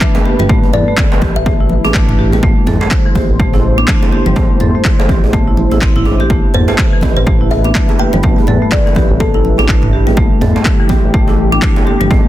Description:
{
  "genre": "afro house",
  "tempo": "124 BPM",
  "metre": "4/4",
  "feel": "swing 59% on 16ths",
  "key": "A minor",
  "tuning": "A4 = 440 Hz",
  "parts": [
    { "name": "dark analog pad", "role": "sustained chords", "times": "0.0-12.3 s", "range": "A3 to C5", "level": "-21 LUFS", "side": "equal", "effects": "chorus, sidechain pumping" },
    { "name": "marimba with hard mallets", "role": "arpeggios", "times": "0.0-12.2 s", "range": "E3 to A4", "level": "-18 LUFS", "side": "equal", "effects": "sidechain pumping, ping-pong delay" },
    { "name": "afro-pop drum kit", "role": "drums", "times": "0.0-11.7 s", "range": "handclaps, toms", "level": "-19 LUFS", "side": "equal", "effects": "overdrive" },
    { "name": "electronic kick drum", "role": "drums", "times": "0.0-12.2 s", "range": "none", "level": "-13 LUFS", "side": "equal", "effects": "overdrive" },
    { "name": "congas", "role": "percussion", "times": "0.0-12.2 s", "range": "none", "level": "-21 LUFS", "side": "left 2 dB", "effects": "none" },
    { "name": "djembe", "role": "percussion", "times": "0.1-12.2 s", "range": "none", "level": "-22 LUFS", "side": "right 3 dB", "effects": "none" },
    { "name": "smooth synth bass", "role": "bass", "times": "0.4-12.2 s", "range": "G1 to E2", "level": "-15 LUFS", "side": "equal", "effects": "sidechain pumping" },
    { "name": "kalimba", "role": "melody", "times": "0.7-1.7, 6.5-9.4 s", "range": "A4 to G5", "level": "-21 LUFS", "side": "left 4 dB", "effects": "ping-pong delay" }
  ],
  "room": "studio reverb",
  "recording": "dense, heavily limited modern master",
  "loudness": "-9 LUFS",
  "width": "side -14 dB against mid",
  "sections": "0.0-12.3 A section",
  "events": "none",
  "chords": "0.0 Am7"
}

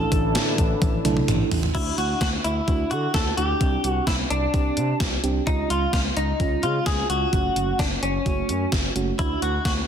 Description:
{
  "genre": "synth-pop",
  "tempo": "129 BPM",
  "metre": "4/4",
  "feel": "straight",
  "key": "D major",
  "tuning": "A4 = 440 Hz",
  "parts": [
    { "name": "direct-recorded clean electric guitar", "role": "melody", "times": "0.0-9.7 s", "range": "C#4 to A4", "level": "-26 LUFS", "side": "left 2 dB", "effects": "lush chorus, ping-pong delay" },
    { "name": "FM electric piano with soft pad layer", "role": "accompaniment", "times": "0.0-9.8 s", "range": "G#3 to A4", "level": "-28 LUFS", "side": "right 7 dB", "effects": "chorus, tremolo" },
    { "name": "sweeping resonant pad", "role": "sustained chords", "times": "0.0-1.7 s", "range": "A2 to E4", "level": "-31 LUFS", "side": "equal", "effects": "wide subtle chorus" },
    { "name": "smooth gliding synth bass", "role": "bass", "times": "0.0-9.8 s", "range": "F#1 to D3", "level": "-26 LUFS", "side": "equal", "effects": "none" },
    { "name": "gated 80s digital drum machine", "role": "drums", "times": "0.1-9.8 s", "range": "crash cymbal, hi-hat, kick drum, snare drum, toms", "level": "-24 LUFS", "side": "equal", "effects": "gated reverb, gated reverb snare, overdrive" }
  ],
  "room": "moderate lush hall reverb, RT60 1.7 s, digital ambience",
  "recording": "dense, heavily limited modern master",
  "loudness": "-20 LUFS",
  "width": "side -8 dB against mid",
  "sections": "0.0-1.7 A section; 1.7-9.9 B section",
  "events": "drum fill 0.8-1.7",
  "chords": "0.0 Asus4; 1.7 Dadd9; 3.6 Csus2; 5.5 C#; 7.3 F#m; 9.2 Dadd9"
}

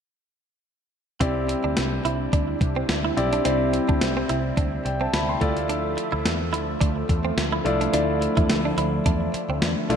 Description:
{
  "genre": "1980s-style pop",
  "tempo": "107 BPM",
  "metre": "4/4",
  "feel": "swing 55% on 16ths",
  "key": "unclear",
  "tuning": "A4 = 441 Hz",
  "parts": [
    { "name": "clear concert grand piano", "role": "accompaniment", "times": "1.2-10.0 s", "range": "A3 to C6", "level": "-26 LUFS", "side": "left 1 dB", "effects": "none" },
    { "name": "phased analog pad", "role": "sustained chords", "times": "1.6-10.0 s", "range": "C3 to E5", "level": "-29 LUFS", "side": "right 1 dB", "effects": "phaser, chorus" },
    { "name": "direct-recorded clean electric guitar", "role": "riff", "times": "1.2-10.0 s", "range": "A3 to E4", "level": "-30 LUFS", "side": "right 5 dB", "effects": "wide subtle chorus, digital delay" },
    { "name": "vintage muted picked electric bass", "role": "bass", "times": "1.2-10.0 s", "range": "B1 to E2", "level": "-28 LUFS", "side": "equal", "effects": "none" },
    { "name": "clean 12-bit digital drum machine", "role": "drums", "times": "1.2-10.0 s", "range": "hi-hat, kick drum, snare drum", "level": "-26 LUFS", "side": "equal", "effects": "gated reverb" }
  ],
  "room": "moderate plate reverb, RT60 2.6 s",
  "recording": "bright 1980s-style digital production",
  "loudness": "-21 LUFS",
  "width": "side -7 dB against mid",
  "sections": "1.2-10.0 A section",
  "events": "none",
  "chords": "1.2 Cadd9; 5.4 Dmadd9"
}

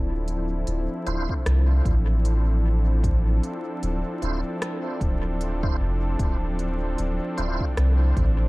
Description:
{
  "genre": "ambient dub",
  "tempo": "76 BPM",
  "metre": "4/4",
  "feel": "swing 58% on 16ths",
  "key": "D minor",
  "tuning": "A4 = 440 Hz",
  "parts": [
    { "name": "warm analog pad", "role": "sustained chords", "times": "0.0-8.5 s", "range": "F3 to A4", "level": "-30 LUFS", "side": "left 1 dB", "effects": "chorus" },
    { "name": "soft dub sub bass", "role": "bass", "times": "0.0-8.5 s", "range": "D1 to C2", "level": "-22 LUFS", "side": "equal", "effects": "tube saturation" },
    { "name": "organic electronic drum kit", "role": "drums", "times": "0.3-8.4 s", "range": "hi-hat, rim click", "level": "-37 LUFS", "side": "equal", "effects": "dub echo" },
    { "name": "tonewheel organ", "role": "stabs", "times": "1.1-7.7 s", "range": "D4 to C5", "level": "-36 LUFS", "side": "right 2 dB", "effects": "chorus vibrato, fast rotary speaker, dub echo" },
    { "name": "electronic kick drum", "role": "drums", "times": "1.3-8.3 s", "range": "none", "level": "-26 LUFS", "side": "equal", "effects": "none" }
  ],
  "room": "light reverb, digital ambience",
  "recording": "echo-heavy mix, vinyl crackle",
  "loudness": "-22 LUFS",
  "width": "side -22 dB against mid",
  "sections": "0.0-8.5 A section",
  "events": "none",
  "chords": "0.0 Dm9"
}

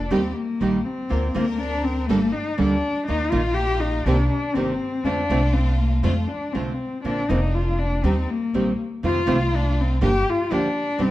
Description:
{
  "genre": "tango",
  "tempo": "121 BPM",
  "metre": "4/4",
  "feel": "rubato",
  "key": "Bb major",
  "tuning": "A4 = 436 Hz",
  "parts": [
    { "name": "dark cello", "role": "second line", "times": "0.0-11.1 s", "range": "A3 to G4", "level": "-24 LUFS", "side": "left 3 dB", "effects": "none" },
    { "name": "clear studio string section", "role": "stabs", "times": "0.0-11.1 s", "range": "G3 to Bb4", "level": "-34 LUFS", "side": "equal", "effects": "none" },
    { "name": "upright bass", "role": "bass", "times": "0.0-11.1 s", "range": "F1 to F2", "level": "-24 LUFS", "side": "equal", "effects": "none" },
    { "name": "nylon-string guitar", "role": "accompaniment", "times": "0.1-11.1 s", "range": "C3 to A4", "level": "-25 LUFS", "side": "right 2 dB", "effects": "none" }
  ],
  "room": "moderate large studio reverb, RT60 1.3 s",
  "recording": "dark, warm production",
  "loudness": "-20 LUFS",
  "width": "side -15 dB against mid",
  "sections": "0.0-11.1 A section",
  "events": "cello solo 0.0-11.1",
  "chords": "0.1 Eb; 1.1 Bbadd9/D; 2.1 Gmadd9; 3.1 Ebsus2; 4.1 Cm7; 5.0 F6; 7.0 Bbadd9; 8.0 Eb6; 9.0 F7; 10.0 Gm7"
}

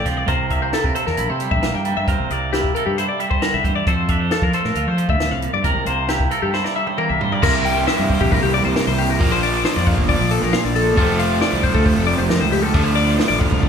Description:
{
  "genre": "math rock and midwest emo",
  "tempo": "135 BPM",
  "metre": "4/4",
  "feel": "straight",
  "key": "unclear",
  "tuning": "A4 = 440 Hz",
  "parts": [
    { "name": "twangy electric guitar", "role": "accompaniment", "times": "0.0-9.2 s", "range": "F2 to Bb4", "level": "-24 LUFS", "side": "right 6 dB", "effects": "spring reverb" },
    { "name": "twelve-string electric guitar", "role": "arpeggios", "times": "0.0-13.7 s", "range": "G4 to G5", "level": "-21 LUFS", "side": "left 6 dB", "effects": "spring reverb" },
    { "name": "fuzz fingered electric bass", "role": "bass", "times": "0.0-13.7 s", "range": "F1 to F3", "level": "-22 LUFS", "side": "equal", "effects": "overdrive" },
    { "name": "compact cocktail drum kit", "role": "drums", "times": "0.1-13.7 s", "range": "crash cymbal, hi-hat, kick drum, snare drum, toms", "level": "-22 LUFS", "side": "equal", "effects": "none" },
    { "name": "overdriven electric guitar", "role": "riff", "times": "7.4-13.7 s", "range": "F2 to E4", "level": "-20 LUFS", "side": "right 3 dB", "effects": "none" }
  ],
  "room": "moderate large studio reverb, RT60 0.8 s",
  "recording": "band playing live in one room",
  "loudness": "-16 LUFS",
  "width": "side -7 dB against mid",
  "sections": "0.0-7.4 A section; 7.4-13.7 B section",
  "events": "drum fill 6.5-7.4",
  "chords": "0.3 C7; 3.9 F6; 5.7 C7; 9.2 Bb; 11.0 F6; 12.7 Dm7"
}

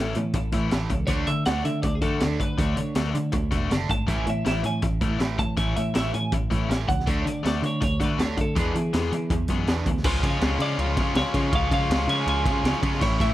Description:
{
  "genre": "indie rock",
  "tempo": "161 BPM",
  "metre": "4/4",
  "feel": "straight",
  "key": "unclear",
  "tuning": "A4 = 442 Hz",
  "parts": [
    { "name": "twelve-string electric guitar", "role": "melody", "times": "0.0-13.3 s", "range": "G#4 to A5", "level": "-30 LUFS", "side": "right 1 dB", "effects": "tape echo" },
    { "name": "high-gain distorted guitar", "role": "riff", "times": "0.0-13.3 s", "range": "A2 to G#4", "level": "-30 LUFS", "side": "left 6 dB", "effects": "distortion" },
    { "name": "overdriven semi-hollow guitar", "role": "riff", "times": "0.0-13.3 s", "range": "A2 to E#4", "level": "-31 LUFS", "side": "right 5 dB", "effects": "wide subtle chorus" },
    { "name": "picked electric bass", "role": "bass", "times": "0.0-13.3 s", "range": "E1 to E3", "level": "-27 LUFS", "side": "equal", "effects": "none" },
    { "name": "raw garage drum kit", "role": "drums", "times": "0.1-13.3 s", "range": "crash cymbal, hi-hat, kick drum, ride cymbal, snare drum", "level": "-26 LUFS", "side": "equal", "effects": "none" },
    { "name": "glockenspiel with soft plastic mallets", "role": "second line", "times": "10.0-13.3 s", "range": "G#5 to C#6", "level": "-36 LUFS", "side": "right 7 dB", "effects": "none" },
    { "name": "analog string pad", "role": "sustained chords", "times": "10.0-13.3 s", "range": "E4 to A5", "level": "-42 LUFS", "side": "left 2 dB", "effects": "none" }
  ],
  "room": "studio ambience",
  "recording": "dry, close 1970s-style studio recording",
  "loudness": "-22 LUFS",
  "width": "side -14 dB against mid",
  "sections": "0.0-10.0 A section; 10.0-13.3 B section",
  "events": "none",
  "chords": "0.0 A; 1.1 Dmaj7; 4.1 A; 7.1 D; 8.6 E7; 10.0 C#"
}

